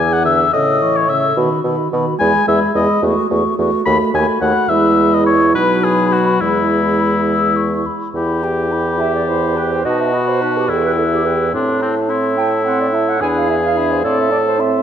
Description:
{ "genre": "quick classical-period movement for wind quintet", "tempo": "71 BPM (dotted quarters)", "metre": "6/8", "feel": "straight", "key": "E major, E minor from 8.1 s", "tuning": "A4 = 440 Hz", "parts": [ { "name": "mellow hollow concert flute", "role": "melody", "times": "0.0-14.8 s", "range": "E5 to E6", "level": "-23 LUFS", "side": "left 7 dB", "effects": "none" }, { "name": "warm oboe", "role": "second line", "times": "0.0-14.6 s", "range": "C4 to B5", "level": "-18 LUFS", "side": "left 4 dB", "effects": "none" }, { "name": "dark French horn", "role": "accompaniment", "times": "0.0-14.8 s", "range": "C#3 to G4", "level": "-22 LUFS", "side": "left 1 dB", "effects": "none" }, { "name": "dark clarinet", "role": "accompaniment", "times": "0.0-14.8 s", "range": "D#4 to G#5", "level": "-21 LUFS", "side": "right 6 dB", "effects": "none" }, { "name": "warm bassoon", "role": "bass", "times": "0.0-14.8 s", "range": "D#2 to B2", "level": "-18 LUFS", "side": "right 2 dB", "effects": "none" } ], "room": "wet scoring stage reverb, RT60 1.9 s", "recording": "dark, warm production", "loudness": "-13 LUFS", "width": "side -9 dB against mid", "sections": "0.0-8.1 A section; 8.1-14.8 B section", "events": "none", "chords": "0.0 E7; 0.5 A; 1.4 B; 2.2 E; 3.0 F#m7/E; 3.9 B7/D#; 4.7 E; 5.5 B; 6.4 E; 8.1 Em; 9.8 B7; 10.7 Em; 11.5 Am; 13.2 E7; 14.0 Am" }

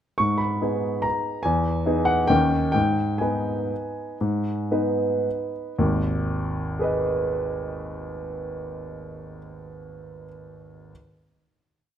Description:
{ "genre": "classical, piano waltz", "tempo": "106-153 BPM", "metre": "3/4", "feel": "rubato", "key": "G# minor", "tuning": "A4 = 441 Hz", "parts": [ { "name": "warm grand piano", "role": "solo", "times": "0.2-10.9 s", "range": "G#1 to C#6", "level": "-23 LUFS", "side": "equal", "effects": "none" } ], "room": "moderate recital hall reverb, RT60 1.6 s", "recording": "close, detailed microphones", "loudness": "-22 LUFS", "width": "side -10 dB against mid", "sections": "0.2-5.8 A section; 5.8-8.8 final chord", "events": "slowing down 2.1-5.8", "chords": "0.2 G#m; 1.5 Emaj7; 2.3 D#7; 2.7 G#m" }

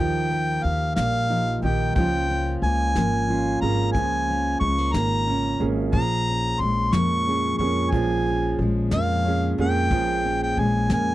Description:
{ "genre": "acoustic folk duo or small band", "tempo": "60 BPM (dotted quarters)", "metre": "6/8", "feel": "straight", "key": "unclear", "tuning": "A4 = 440 Hz", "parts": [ { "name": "mellow harmonica", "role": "melody", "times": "0.0-11.1 s", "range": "F5 to Db6", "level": "-25 LUFS", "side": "left 1 dB", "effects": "none" }, { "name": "fingerpicked steel-string acoustic guitar", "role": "accompaniment", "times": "0.0-11.1 s", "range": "Bb2 to Bb4", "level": "-27 LUFS", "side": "left 2 dB", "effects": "none" }, { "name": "clear upright piano", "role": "arpeggios", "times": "0.0-11.1 s", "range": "F3 to Ab4", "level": "-28 LUFS", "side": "right 7 dB", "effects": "none" }, { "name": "upright bass", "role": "bass", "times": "0.0-11.1 s", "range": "Ab1 to F2", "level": "-26 LUFS", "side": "equal", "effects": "none" }, { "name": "soft brush drum kit", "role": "drums", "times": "0.3-11.1 s", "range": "hi-hat, kick drum, snare drum", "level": "-25 LUFS", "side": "left 1 dB", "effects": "none" } ], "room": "little or no reverb", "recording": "dry, close 1970s-style studio recording", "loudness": "-20 LUFS", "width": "side -15 dB against mid", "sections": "0.0-11.1 A section", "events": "none", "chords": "0.0 Ebadd9; 2.0 Db6; 5.9 Bbm7" }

